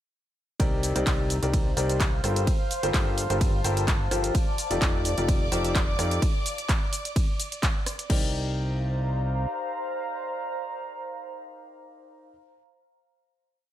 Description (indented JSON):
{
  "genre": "piano house",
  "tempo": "128 BPM",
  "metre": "4/4",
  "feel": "swing 53% on 16ths",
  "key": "C dorian",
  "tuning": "A4 = 439 Hz",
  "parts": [
    { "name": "warm upright piano", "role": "riff", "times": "0.6-12.3 s", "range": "C3 to D5", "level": "-30 LUFS", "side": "left 2 dB", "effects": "vintage 12-bit sampler grit, sidechain pumping" },
    { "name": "fat analog bass", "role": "bass", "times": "0.6-9.5 s", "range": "F1 to F2", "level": "-28 LUFS", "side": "equal", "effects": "sidechain pumping" },
    { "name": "electronic kick drum", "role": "drums", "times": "0.6-8.2 s", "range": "none", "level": "-25 LUFS", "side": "equal", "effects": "overdrive" },
    { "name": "house drum kit", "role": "drums", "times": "0.6-8.2 s", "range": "crash cymbal, handclaps, hi-hat, ride cymbal, rim click, shaker", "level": "-31 LUFS", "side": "equal", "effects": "overdrive" },
    { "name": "warbly tape-like pad", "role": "texture", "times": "1.3-12.4 s", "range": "C5 to Bb5", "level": "-34 LUFS", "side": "equal", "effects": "chorus, built-in reverb, sidechain pumping" },
    { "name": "warm symphonic violin section", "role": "sustained chords", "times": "4.3-8.1 s", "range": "D5 to D6", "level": "-34 LUFS", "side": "right 1 dB", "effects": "sidechain pumping" }
  ],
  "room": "little or no reverb",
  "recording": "none",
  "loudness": "-24 LUFS",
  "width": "side -12 dB against mid",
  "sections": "0.6-8.1 drop; 8.1-11.8 final chord",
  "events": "drop 0.6-8.1",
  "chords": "0.6 Cm9; 2.2 Gm11; 4.3 F13; 6.2 N.C.; 8.1 Cm9",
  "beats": "| 0.60 1.07 1.53 2.00 | 2.47 2.94 3.41 3.88 | 4.35 4.82 5.29 5.75 | 6.22 6.69 7.16 7.63 | 8.10 8.57 9.04 9.50 | 9.97 10.44 10.91 11.38"
}